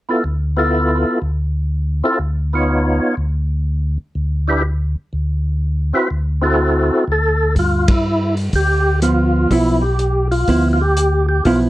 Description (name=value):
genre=soul jazz organ trio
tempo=123 BPM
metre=4/4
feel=swing 67% on 8ths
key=G mixolydian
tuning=A4 = 440 Hz
part: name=percussive tonewheel organ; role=melody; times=0.1-11.6 s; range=B3 to C#5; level=-17 LUFS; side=equal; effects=slow rotary speaker, overdrive, chorus vibrato
part: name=mellow tonewheel organ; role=bass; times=0.2-11.7 s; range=B1 to G2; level=-18 LUFS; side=equal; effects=chorus vibrato, slow rotary speaker
part: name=warm soul drum kit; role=drums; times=7.6-11.6 s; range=hi-hat, kick drum, ride cymbal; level=-21 LUFS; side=equal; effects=none
part: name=hollow-body jazz guitar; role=accompaniment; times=9.0-11.7 s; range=F3 to E4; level=-16 LUFS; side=right 2 dB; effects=none
room=light reverb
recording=worn, warbling old tape, cassette tape, warbly pitch drift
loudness=-15 LUFS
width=side -16 dB against mid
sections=0.0-7.6 A section; 7.6-11.7 B section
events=band accent 7.8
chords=0.0 Dm69; 7.6 G13